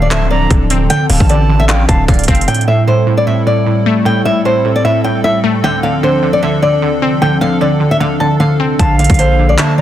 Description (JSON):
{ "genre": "hip hop, trap", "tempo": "152 BPM", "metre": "4/4", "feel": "half-time", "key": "A phrygian", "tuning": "A4 = 441 Hz", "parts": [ { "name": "flamenco guitar", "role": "melody", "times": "0.0-9.8 s", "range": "C5 to A5", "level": "-16 LUFS", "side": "left 1 dB", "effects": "digital delay" }, { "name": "reedy silver concert flute", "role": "second line", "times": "0.0-2.5, 8.8-9.8 s", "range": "D5 to Bb5", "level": "-21 LUFS", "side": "right 5 dB", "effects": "digital delay" }, { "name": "glassy wavetable pluck", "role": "accompaniment", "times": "0.0-9.8 s", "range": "A2 to C4", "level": "-14 LUFS", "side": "right 1 dB", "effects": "chorus" }, { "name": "hollow soft pad", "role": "sustained chords", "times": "0.0-9.8 s", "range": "F3 to A4", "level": "-18 LUFS", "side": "left 1 dB", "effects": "chorus" }, { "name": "distorted 808-style bass", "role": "bass", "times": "0.0-2.5, 8.8-9.6 s", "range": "D1 to Bb1", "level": "-13 LUFS", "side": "equal", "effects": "distortion" }, { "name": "trap drum kit", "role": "drums", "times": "0.1-2.7, 8.8-9.7 s", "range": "handclaps, hi-hat, kick drum", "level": "-14 LUFS", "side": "equal", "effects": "overdrive" } ], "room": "digital ambience", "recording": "dense, heavily limited modern master", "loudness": "-10 LUFS", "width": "side -12 dB against mid", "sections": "0.0-2.5 A section; 2.5-9.8 A section", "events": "none", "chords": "0.0 Dm7; 2.5 Am7; 5.6 Dm7; 8.8 Bbmaj7", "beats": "0.11 0.51 | 0.90 1.29 1.69 2.08 | 2.48 2.87 3.27 3.66 | 4.06 4.45 4.85 5.24 | 5.64 6.03 6.43 6.82 | 7.22 7.61 8.01 8.40 | 8.79 9.19 9.58" }